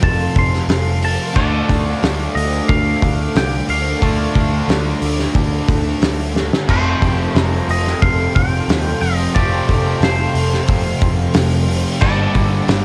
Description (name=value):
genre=rock, shoegaze and dream pop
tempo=90 BPM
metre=4/4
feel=straight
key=unclear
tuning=A4 = 441 Hz
part: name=twangy electric guitar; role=melody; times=0.0-12.8 s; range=C5 to C6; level=-26 LUFS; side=equal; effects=analog delay
part: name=dark analog pad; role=sustained chords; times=0.0-12.8 s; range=A4 to D6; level=-30 LUFS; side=equal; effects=chorus, cassette tape
part: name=cranked stack guitar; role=riff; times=0.0-12.8 s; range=F2 to D4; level=-25 LUFS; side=equal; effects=overdrive, cassette tape
part: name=thick fuzz guitar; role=riff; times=0.0-12.8 s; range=F2 to D4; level=-27 LUFS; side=equal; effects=none
part: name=twangy electric guitar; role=riff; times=0.0-12.8 s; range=G2 to A4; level=-32 LUFS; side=equal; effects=none
part: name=vintage muted picked electric bass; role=bass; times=0.0-12.8 s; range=F1 to Eb2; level=-22 LUFS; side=equal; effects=none
part: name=loose indie drum kit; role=drums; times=0.0-12.8 s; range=crash cymbal, hi-hat, kick drum, snare drum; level=-21 LUFS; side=equal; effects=cassette tape
room=small room reverb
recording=home recording on cassette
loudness=-16 LUFS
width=mono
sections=0.0-6.7 A section; 6.7-12.8 A section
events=drum fill 6.3-6.7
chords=0.0 Fadd9; 1.4 Dm; 6.7 Fadd9; 12.0 Gmadd9